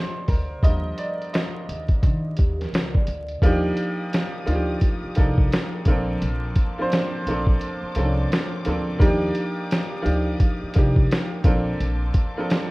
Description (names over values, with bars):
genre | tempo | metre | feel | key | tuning
lo-fi hip hop | 86 BPM | 4/4 | swing 63% on 16ths | Eb lydian | A4 = 444 Hz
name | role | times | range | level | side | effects
bright upright piano | accompaniment | 0.0-12.7 s | D3 to Eb5 | -25 LUFS | equal | cassette tape, low-pass filter
upright bass | bass | 0.3-12.1 s | Bb1 to Eb3 | -25 LUFS | equal | none
lo-fi sampler-style drum kit | drums | 0.3-12.7 s | hi-hat, kick drum, snare drum | -20 LUFS | equal | none
vibraphone with soft mallets | second line | 2.4-3.4 s | G4 to D5 | -37 LUFS | equal | low-pass filter, tape echo
warm studio string section | sustained chords | 3.4-12.7 s | Bb3 to Eb6 | -40 LUFS | left 2 dB | low-pass filter
room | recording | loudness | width
moderate studio reverb, RT60 0.6 s | rough home demo mix, vinyl crackle | -20 LUFS | side -22 dB against mid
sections
0.0-3.4 A section; 3.4-12.7 B section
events
upright piano solo 0.0-3.4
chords
0.0 Ebmaj9; 5.9 Bbmaj9; 9.0 Ebmaj9; 11.4 Bbmaj9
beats
| 0.63 1.33 2.02 2.72 | 3.42 4.12 4.82 5.51 | 6.21 6.91 7.61 8.30 | 9.00 9.70 10.40 11.09 | 11.79 12.49